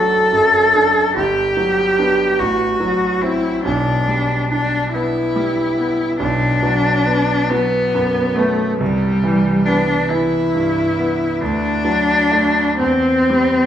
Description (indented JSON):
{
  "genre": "classical, romantic duo for cello and grand piano",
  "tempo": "47 BPM (dotted quarters)",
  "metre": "6/8",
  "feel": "uneven beats, rubato",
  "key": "unclear",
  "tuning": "A4 = 440 Hz",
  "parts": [
    { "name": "rich cello", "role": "melody", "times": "0.0-13.7 s", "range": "G3 to A4", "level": "-16 LUFS", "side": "left 1 dB", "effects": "none" },
    { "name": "clear concert grand piano", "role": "accompaniment", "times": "0.0-13.7 s", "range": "F#1 to D4", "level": "-20 LUFS", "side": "right 1 dB", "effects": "none" }
  ],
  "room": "wet recital hall reverb, RT60 1.5 s",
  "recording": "recorded in a church or concert hall",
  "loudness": "-14 LUFS",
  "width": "side -10 dB against mid",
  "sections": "0.0-13.7 A section",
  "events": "none",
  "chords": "0.0 D/F#; 1.2 Gmaj7; 2.4 F#dim/A; 3.7 G/B; 6.2 Bm; 8.8 Cmaj7; 11.4 D; 12.8 C/E",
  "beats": "| 1.17 2.39 | 3.66 4.95 | 6.21 7.51 | 8.81 10.10 | 11.41 12.80"
}